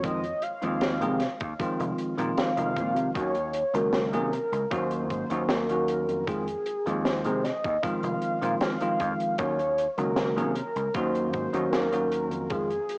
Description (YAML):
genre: vaporwave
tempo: 77 BPM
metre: 4/4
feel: straight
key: Eb dorian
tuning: A4 = 438 Hz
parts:
  - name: warm velvety synth lead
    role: melody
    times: 0.0-13.0 s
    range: Ab4 to F5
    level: -29 LUFS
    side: equal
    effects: chorus, cassette tape, tape echo
  - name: bell-like tine electric piano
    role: accompaniment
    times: 0.0-12.7 s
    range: Eb3 to Ab4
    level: -29 LUFS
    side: equal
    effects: lush chorus, cassette tape
  - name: vintage slap bass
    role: bass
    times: 0.0-12.8 s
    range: F1 to C3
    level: -33 LUFS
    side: equal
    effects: none
  - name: electronic kick drum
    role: drums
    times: 0.0-12.7 s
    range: none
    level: -36 LUFS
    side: equal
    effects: vintage 12-bit sampler grit
  - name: open jazz drum kit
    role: drums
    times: 0.0-13.0 s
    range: hi-hat, snare drum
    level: -31 LUFS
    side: equal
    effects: vintage 12-bit sampler grit
room: wet studio reverb, RT60 0.6 s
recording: home recording on cassette, small speaker sound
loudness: -25 LUFS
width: side -31 dB against mid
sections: 0.0-13.0 A section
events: none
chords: 0.0 Fm7; 3.2 Ebm7; 6.3 Fm7; 9.4 Ebm7